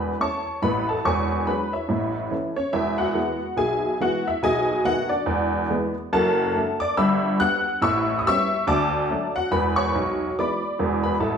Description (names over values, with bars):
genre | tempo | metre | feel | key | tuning
jazz, stride piano | 142 BPM | 4/4 | swing 60% on 8ths | unclear | A4 = 440 Hz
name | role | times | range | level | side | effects
honky-tonk upright piano | solo | 0.0-11.4 s | E1 to F#6 | -20 LUFS | equal | none
room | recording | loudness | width
wet large studio reverb, RT60 1.2 s | band playing live in one room | -20 LUFS | side -7 dB against mid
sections
0.0-11.4 A section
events
none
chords
0.0 A; 1.0 E13; 1.9 A; 2.7 E; 4.4 B7; 5.3 E; 6.1 D/F#; 7.0 G6; 7.8 A9; 8.7 D; 9.5 E7